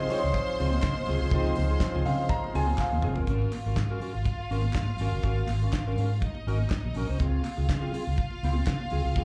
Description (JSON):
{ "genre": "disco", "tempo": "122 BPM", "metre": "4/4", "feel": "straight", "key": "unclear", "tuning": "A4 = 444 Hz", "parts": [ { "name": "bright studio violin section", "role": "second line", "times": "0.0-9.2 s", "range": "Eb4 to C6", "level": "-38 LUFS", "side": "equal", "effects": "slapback echo" }, { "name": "mellow electric guitar", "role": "accompaniment", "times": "0.0-9.2 s", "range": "C4 to C5", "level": "-38 LUFS", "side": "equal", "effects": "analog chorus, slapback echo" }, { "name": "warm grand piano", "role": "accompaniment", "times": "0.0-3.3 s", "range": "C3 to Bb5", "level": "-34 LUFS", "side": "equal", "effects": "slapback echo" }, { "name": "overdriven tonewheel organ", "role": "sustained chords", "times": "0.0-3.2 s", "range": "F3 to F4", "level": "-40 LUFS", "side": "equal", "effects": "chorus vibrato, lush chorus" }, { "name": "fingered electric bass with an envelope filter", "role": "bass", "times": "0.0-9.2 s", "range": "F1 to Db3", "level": "-30 LUFS", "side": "equal", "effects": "none" }, { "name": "damped 70s drum kit", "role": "drums", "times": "0.1-9.2 s", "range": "hi-hat, kick drum, snare drum, toms", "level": "-32 LUFS", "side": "equal", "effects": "none" }, { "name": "congas", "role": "percussion", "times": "0.1-9.2 s", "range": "none", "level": "-43 LUFS", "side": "equal", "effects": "slapback echo" }, { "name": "group handclap", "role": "percussion", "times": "0.8-8.8 s", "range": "none", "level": "-47 LUFS", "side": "equal", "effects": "slapback echo" } ], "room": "light reverb", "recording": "live gig heard through the venue's PA, club reverb", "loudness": "-28 LUFS", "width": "mono", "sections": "0.0-3.3 A section; 3.3-9.2 B section", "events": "grand piano solo 0.0-3.3; drum fill 2.8-3.3", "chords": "0.0 Dbmaj7; 3.3 Ab9sus4", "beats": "0.35 0.84 | 1.32 1.81 2.30 2.79 | 3.28 3.77 4.26 4.75 | 5.24 5.73 6.22 6.71 | 7.20 7.69 8.18 8.67 | 9.16" }